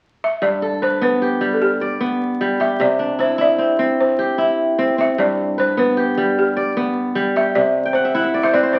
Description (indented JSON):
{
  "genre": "west african traditional",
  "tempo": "101 BPM (dotted quarters)",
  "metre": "12/8",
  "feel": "straight",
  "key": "G major",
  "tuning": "A4 = 441 Hz",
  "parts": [
    { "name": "balafon", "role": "melody", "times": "0.2-8.8 s", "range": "G4 to E5", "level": "-22 LUFS", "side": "equal", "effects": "none" },
    { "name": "kora", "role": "arpeggios", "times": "0.4-8.8 s", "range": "G2 to G5", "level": "-20 LUFS", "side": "equal", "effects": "none" }
  ],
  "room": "wet large studio reverb, RT60 1.2 s",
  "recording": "very old 78 rpm record, vinyl crackle",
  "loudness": "-18 LUFS",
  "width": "mono",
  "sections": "0.4-8.8 A section",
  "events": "kora fill 7.8-8.8",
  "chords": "0.4 G; 2.8 C; 5.2 G; 7.6 C",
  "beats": "| 0.42 1.01 1.61 2.21 | 2.80 3.40 3.99 4.58 | 5.18 5.77 6.37 6.96 | 7.55 8.15 8.74"
}